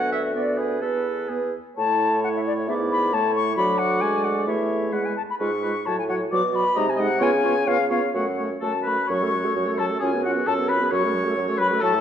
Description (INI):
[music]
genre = quick classical-period movement for wind quintet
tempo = 124-137 BPM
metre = 2/4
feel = rubato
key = A major, F# minor from 5.4 s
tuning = A4 = 439 Hz
[part]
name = concert flute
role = melody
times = 0.0-12.0 s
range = B4 to D6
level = -25 LUFS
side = left 5 dB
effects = none
[part]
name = warm oboe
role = second line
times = 0.0-12.0 s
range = F#4 to D#5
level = -29 LUFS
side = left 2 dB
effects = none
[part]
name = warm French horn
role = accompaniment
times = 0.0-12.0 s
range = F#3 to C#4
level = -29 LUFS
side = equal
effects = none
[part]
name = warm clarinet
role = accompaniment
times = 0.0-12.0 s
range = D#4 to F#5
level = -30 LUFS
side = right 6 dB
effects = none
[part]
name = mellow bassoon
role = bass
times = 0.0-12.0 s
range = D2 to C#3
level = -25 LUFS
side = right 2 dB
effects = none
[sound]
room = moderate recital hall reverb, RT60 1.5 s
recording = dark, warm production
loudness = -20 LUFS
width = side -9 dB against mid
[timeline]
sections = 0.0-1.8 A section; 1.8-9.1 B section; 9.1-12.0 C section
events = none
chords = 0.0 Bm/D; 0.8 Esus4; 1.8 A; 2.7 E7/G#; 3.1 A; 3.6 Bm6/D; 4.5 A/E; 4.9 E; 5.4 C#7/G#; 5.9 F#m/A; 6.3 Bm; 6.8 G#7/B#; 7.2 C#7; 8.2 F#m; 10.0 C#7/F#; 10.9 F#m